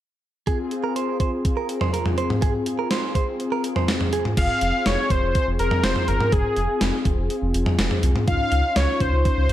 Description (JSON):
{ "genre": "synth-pop", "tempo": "123 BPM", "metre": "4/4", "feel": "straight", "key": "F minor", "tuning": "A4 = 441 Hz", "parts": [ { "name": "direct-recorded clean electric guitar", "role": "second line", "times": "0.5-4.2 s", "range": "Ab4 to C5", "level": "-28 LUFS", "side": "right 7 dB", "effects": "analog delay" }, { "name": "mellow synth brass", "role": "accompaniment", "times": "0.5-9.5 s", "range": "C4 to Ab4", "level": "-27 LUFS", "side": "left 2 dB", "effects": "chorus" }, { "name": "gated 80s digital drum machine", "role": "drums", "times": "0.5-9.5 s", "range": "crash cymbal, hi-hat, kick drum, snare drum, toms", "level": "-23 LUFS", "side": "equal", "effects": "gated reverb, gated reverb snare" }, { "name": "wide unison lead", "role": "melody", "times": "4.4-9.5 s", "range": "Ab4 to F5", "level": "-23 LUFS", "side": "equal", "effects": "analog delay" }, { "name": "round analog bass", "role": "bass", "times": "4.4-9.5 s", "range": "F1 to Db2", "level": "-23 LUFS", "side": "equal", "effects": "none" } ], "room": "light reverb", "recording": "dark, warm production", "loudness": "-20 LUFS", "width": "side -12 dB against mid", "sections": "0.5-4.4 A section; 4.4-9.5 B section", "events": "none", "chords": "0.5 Fm; 8.3 Dbadd9" }